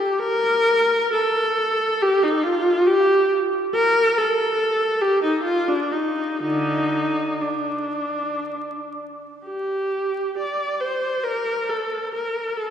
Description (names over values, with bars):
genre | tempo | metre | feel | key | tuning
classical, free, expressive piece for unaccompanied viola | 53-74 BPM | 3/4 | rubato | G minor | A4 = 440 Hz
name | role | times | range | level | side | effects
clear viola | solo | 0.0-12.7 s | D3 to D5 | -19 LUFS | equal | none
room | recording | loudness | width
wet church reverb, RT60 3.6 s | recorded in a church or concert hall, vinyl crackle | -19 LUFS | side -9 dB against mid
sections
0.0-12.7 A section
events
none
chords
none